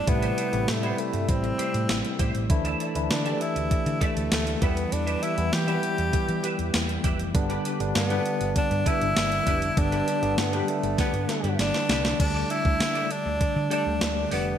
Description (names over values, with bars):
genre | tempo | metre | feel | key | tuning
1980s-style pop | 99 BPM | 4/4 | straight | unclear | A4 = 440 Hz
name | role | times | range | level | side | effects
bright tenor saxophone | melody | 0.0-14.6 s | G3 to G4 | -29 LUFS | equal | ping-pong delay
barky tine electric piano | accompaniment | 0.0-14.6 s | C3 to G4 | -29 LUFS | left 1 dB | medium stereo tremolo
twelve-string electric guitar | riff | 0.1-14.5 s | D4 to E5 | -35 LUFS | right 2 dB | ensemble chorus
hollow-body short-scale fingered electric bass | bass | 0.1-14.5 s | F1 to E3 | -30 LUFS | equal | none
clean 12-bit digital drum machine | drums | 0.1-14.5 s | crash cymbal, hi-hat, kick drum, snare drum | -27 LUFS | equal | gated reverb
room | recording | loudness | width
moderate plate reverb, RT60 3.8 s | bright 1980s-style digital production | -23 LUFS | side -9 dB against mid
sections
0.0-12.2 A section; 12.2-14.6 B section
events
drum fill 11.0-12.2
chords
0.0 Am7; 2.5 Dsus2; 4.6 Em; 7.3 G; 12.2 Dsus4